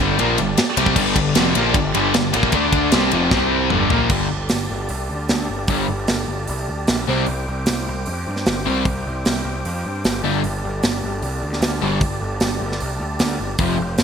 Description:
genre	hard rock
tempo	152 BPM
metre	4/4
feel	straight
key	G minor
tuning	A4 = 440 Hz
part	tonewheel organ	sustained chords	0.0-14.0 s	F3 to D5	-28 LUFS	right 1 dB	chorus vibrato, wide subtle chorus
part	crunchy overdriven guitar	riff	0.0-13.8 s	F2 to D4	-22 LUFS	left 12 dB	lush chorus
part	heavy high-gain guitar	riff	0.0-4.1 s	F2 to D4	-23 LUFS	equal	distortion
part	overdriven semi-hollow guitar	riff	0.0-13.8 s	F2 to D4	-24 LUFS	right 12 dB	analog chorus
part	fuzz picked electric bass	bass	0.0-14.0 s	F1 to G2	-25 LUFS	equal	overdrive
part	tight metal drum kit	drums	0.2-14.0 s	crash cymbal, hi-hat, kick drum, ride cymbal, snare drum, toms	-21 LUFS	right 1 dB	gated reverb
room	moderate plate reverb, RT60 1.9 s, small room ambience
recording	bright 1980s-style digital production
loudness	-17 LUFS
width	side -7 dB against mid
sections	0.0-4.1 A section; 4.1-14.0 B section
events	drum fill 3.3-4.1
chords	0.0 Gm; 2.5 D5; 2.9 G5; 3.3 C5; 3.7 Gm; 4.1 G5; 7.1 C5; 10.2 G5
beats	0.19 0.58 | 0.97 1.36 1.76 2.15 | 2.54 2.94 3.33 3.72 | 4.12 4.51 4.91 5.30 | 5.70 6.09 6.49 6.89 | 7.28 7.68 8.07 8.47 | 8.87 9.26 9.66 10.05 | 10.45 10.84 11.24 11.63 | 12.02 12.42 12.81 13.21 | 13.60 13.99

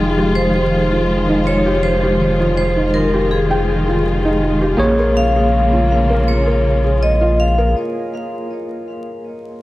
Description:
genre	trip hop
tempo	81 BPM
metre	4/4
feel	swing 56% on 16ths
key	F minor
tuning	A4 = 437 Hz
part	vibraphone with medium hard mallets	melody	0.0-7.7 s	Ab4 to F5	-20 LUFS	left 1 dB	tape echo
part	barky tine electric piano	accompaniment	0.0-9.6 s	F3 to G5	-22 LUFS	equal	harmonic tremolo, tape echo
part	dark symphonic string section	sustained chords	0.0-7.7 s	Db3 to F4	-21 LUFS	left 1 dB	vintage 12-bit sampler grit
part	felt-muted upright piano	arpeggios	0.0-9.6 s	Eb4 to G5	-22 LUFS	equal	tape echo
part	round analog bass	bass	0.0-7.7 s	F1 to Bb1	-18 LUFS	equal	none
part	bowed-like drone	texture	0.0-7.7 s	Ab4	-32 LUFS	left 1 dB	built-in reverb
room	light reverb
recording	vinyl crackle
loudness	-13 LUFS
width	side -17 dB against mid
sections	0.0-9.6 A section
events	break 7.7-9.6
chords	0.0 Fm9; 4.8 Bbm7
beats	0.34 1.08 | 1.82 2.56 3.30 4.04 | 4.78 5.52 6.26 7.00 | 7.74 8.48 9.22

